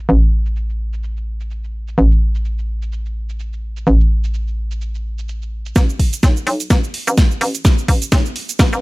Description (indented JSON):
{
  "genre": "bass house",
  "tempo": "127 BPM",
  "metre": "4/4",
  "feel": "swing 57% on 16ths",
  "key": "unclear",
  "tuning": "A4 = 440 Hz",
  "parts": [
    { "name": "hollow knocking FM bass", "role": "bass", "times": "0.0-8.8 s", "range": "A1 to B1", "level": "-17 LUFS", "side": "equal", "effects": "sidechain pumping, high-pass filter" },
    { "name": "house drum kit", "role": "drums", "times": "0.1-8.8 s", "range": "hi-hat, shaker, snare drum", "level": "-21 LUFS", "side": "equal", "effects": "low-pass filter on hats, low-pass filter on perc, low-pass filter on snare, low-pass filter on cymbals, low-pass filter on room" },
    { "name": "electronic kick drum", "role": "drums", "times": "5.8-8.7 s", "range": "none", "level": "-13 LUFS", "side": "equal", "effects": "none" }
  ],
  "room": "little or no reverb",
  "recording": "none",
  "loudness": "-15 LUFS",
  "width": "side -23 dB against mid",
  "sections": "0.0-5.8 A section; 5.8-8.8 B section",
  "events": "build-up 5.8-8.8; drum fill 5.8-8.8",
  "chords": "none"
}